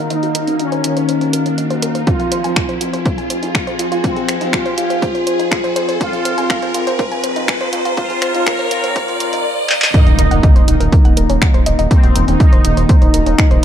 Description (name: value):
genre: melodic techno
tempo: 122 BPM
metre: 4/4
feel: straight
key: Eb dorian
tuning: A4 = 439 Hz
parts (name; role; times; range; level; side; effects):
- evolving wavetable pad; sustained chords; 0.0-13.6 s; F4 to Bb5; -28 LUFS; equal; chorus, built-in reverb, sidechain pumping
- woody wave-folded pluck; arpeggios; 0.0-13.6 s; Db4 to Gb6; -24 LUFS; equal; chorus, sidechain pumping, tape echo
- analog synth brass; stabs; 0.0-13.6 s; Eb3 to F4; -21 LUFS; left 1 dB; chorus, sidechain pumping, tape echo
- dark detuned saw bass; bass; 0.0-13.6 s; Eb1 to F2; -21 LUFS; equal; none
- riser and impact; sound effects; 0.0-11.9 s; none; -22 LUFS; right 1 dB; none
- resonant sweep polysynth; melody; 0.1-13.6 s; C4 to Bb4; -21 LUFS; equal; chorus, sidechain pumping, tape echo
- punchy analog drum machine; drums; 0.1-13.6 s; finger snaps, handclaps, hi-hat; -21 LUFS; equal; none
- electronic kick drum; drums; 2.1-13.5 s; none; -13 LUFS; equal; none
room: light reverb, digital ambience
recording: dark, warm production, high-pass filter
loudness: -12 LUFS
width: side -10 dB against mid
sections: 0.0-9.9 A section; 9.9-13.6 B section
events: build-up 0.0-9.9; riser 0.0-9.9; filter sweep on synth pluck 0.0-9.9; filter sweep on analog polysynth 0.0-9.9; filter sweep 0.0-9.9; drum fill 9.7; drop 9.9-13.6; impact 9.9-11.9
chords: 0.0 Ebm; 2.1 Fm; 9.9 Ebm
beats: | 0.10 0.60 1.09 1.58 | 2.07 2.56 3.06 3.55 | 4.04 4.53 5.02 5.51 | 6.01 6.50 6.99 7.48 | 7.97 8.47 8.96 9.45 | 9.94 10.43 10.93 11.42 | 11.91 12.40 12.89 13.38